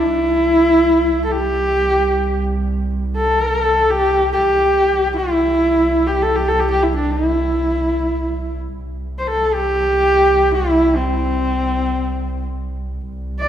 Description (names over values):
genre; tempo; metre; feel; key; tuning
mongolian traditional, Mongolian folk; free time; none; none; C gong mode; A4 = 440 Hz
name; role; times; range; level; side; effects
rich horsehead fiddle; melody; 0.0-13.5 s; C4 to D5; -15 LUFS; equal; none
dark double bass; drone; 0.0-13.5 s; C2; -23 LUFS; right 1 dB; none
room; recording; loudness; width
moderate concert hall reverb, RT60 2.3 s; minimal, uncompressed stereo recording; -14 LUFS; side -10 dB against mid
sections
0.0-13.1 A section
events
none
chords
none